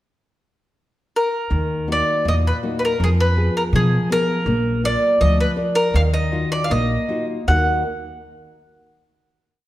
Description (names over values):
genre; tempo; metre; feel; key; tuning
fado-style ballad; 81 BPM; 2/4; rubato; Eb harmonic minor; A4 = 440 Hz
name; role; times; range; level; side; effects
mandolin; melody; 1.2-7.8 s; Ab4 to Gb5; -21 LUFS; equal; none
nylon-string guitar; accompaniment; 1.5-7.8 s; Bb2 to Gb5; -23 LUFS; left 2 dB; none
upright bass; bass; 1.5-7.8 s; Bb1 to Cb3; -20 LUFS; equal; none
room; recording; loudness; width
moderate recital hall reverb, RT60 1.6 s; none; -17 LUFS; side -15 dB against mid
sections
0.0-1.5 pickup bar; 1.5-7.5 A section; 7.5-8.9 final chord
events
none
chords
0.0 N.C.; 1.5 Ebm; 3.0 Fdim; 4.5 Bb; 5.9 Ebmadd9; 7.5 Ebm